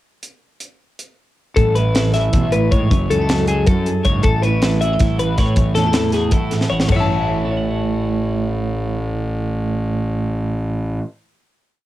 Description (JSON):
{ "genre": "math rock and midwest emo", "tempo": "316 BPM (eighths)", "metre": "7/8", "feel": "straight", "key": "A major", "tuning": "A4 = 439 Hz", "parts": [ { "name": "crisp fusion drum kit", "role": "drums", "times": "0.2-7.0 s", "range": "crash cymbal, hi-hat, kick drum, snare drum, toms", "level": "-19 LUFS", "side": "equal", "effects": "cassette tape" }, { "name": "twelve-string electric guitar", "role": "accompaniment", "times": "1.6-11.1 s", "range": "F#2 to F#5", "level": "-21 LUFS", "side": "right 3 dB", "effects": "harmonic tremolo, cassette tape" }, { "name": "twelve-string electric guitar", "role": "arpeggios", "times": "1.6-11.0 s", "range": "G#4 to A5", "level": "-21 LUFS", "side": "left 4 dB", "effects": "cassette tape, tape echo" }, { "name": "fuzz fingered electric bass", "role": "bass", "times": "1.6-11.0 s", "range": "F#1 to A2", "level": "-21 LUFS", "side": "equal", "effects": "overdrive" } ], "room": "light reverb", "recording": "home recording on cassette", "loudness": "-16 LUFS", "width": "side -14 dB against mid", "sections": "0.2-1.6 pickup bar; 1.6-6.9 A section; 6.9-9.5 final chord", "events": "drum fill 6.6", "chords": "0.2 N.C.; 1.6 Amaj7; 2.9 F#m7; 4.2 A; 5.6 A6", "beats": "| 0.22 0.41 0.60 0.80 0.99 1.18 1.37 | 1.56 1.76 1.95 2.14 2.33 2.52 2.72 | 2.91 3.10 3.29 3.48 3.67 3.87 4.06 | 4.25 4.44 4.63 4.82 5.01 5.20 5.39 | 5.58 5.77 5.96 6.14 6.33 6.52 6.71 | 6.90 7.09 7.28 7.46 7.65 7.84 8.03 | 8.21 8.40 8.59 8.78 8.97 9.15 9.34" }